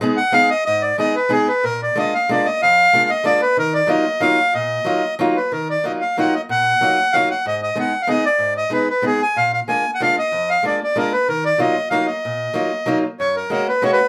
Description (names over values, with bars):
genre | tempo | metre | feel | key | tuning
musette waltz | 187 BPM | 3/4 | rubato | Eb harmonic minor | A4 = 445 Hz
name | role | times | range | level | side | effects
fingerpicked acoustic archtop guitar | accompaniment | 0.0-14.0 s | F2 to Ab4 | -24 LUFS | equal | none
accordion | melody | 0.2-14.1 s | Ab4 to Ab5 | -19 LUFS | equal | none
room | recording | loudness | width
moderate studio ambience, RT60 0.4 s | band playing live in one room | -18 LUFS | mono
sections
0.0-5.5 A section; 5.5-13.2 A section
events
none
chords
0.0 Abm; 1.6 Bb7; 3.6 Ebmadd9; 7.4 Abm; 9.4 Bb7; 11.3 Ebmadd9; 13.2 F#add9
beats
0.01 0.33 | 0.65 0.98 1.31 | 1.64 1.96 2.29 | 2.61 2.92 3.24 | 3.56 3.88 4.20 | 4.53 4.85 5.18 | 5.50 5.83 6.16 | 6.49 6.81 7.12 | 7.44 7.76 8.07 | 8.39 8.71 9.03 | 9.36 9.68 10.00 | 10.32 10.63 10.95 | 11.27 11.58 11.90 | 12.21 12.53 12.86 | 13.18 13.50 13.82